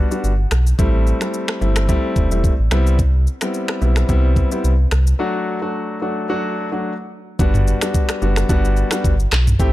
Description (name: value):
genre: afrobeats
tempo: 109 BPM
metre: 4/4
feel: swing 55% on 16ths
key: G major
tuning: A4 = 440 Hz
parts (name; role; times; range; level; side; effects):
- warm concert grand piano; accompaniment; 0.0-9.7 s; F#3 to G4; -22 LUFS; left 1 dB; none
- sub bass with octave; bass; 0.0-9.7 s; E1 to C2; -16 LUFS; equal; none
- afro-pop drum kit; drums; 0.1-9.7 s; finger snaps, handclaps, kick drum, rim click, shaker, toms; -19 LUFS; equal; none
room: little or no reverb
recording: dark, warm production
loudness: -15 LUFS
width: side -16 dB against mid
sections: 0.0-7.4 A section; 7.4-9.7 B section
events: break 5.2-7.4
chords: 0.0 Gmaj7; 0.8 Am7; 2.7 Cmaj7; 5.2 D; 7.4 Gmaj7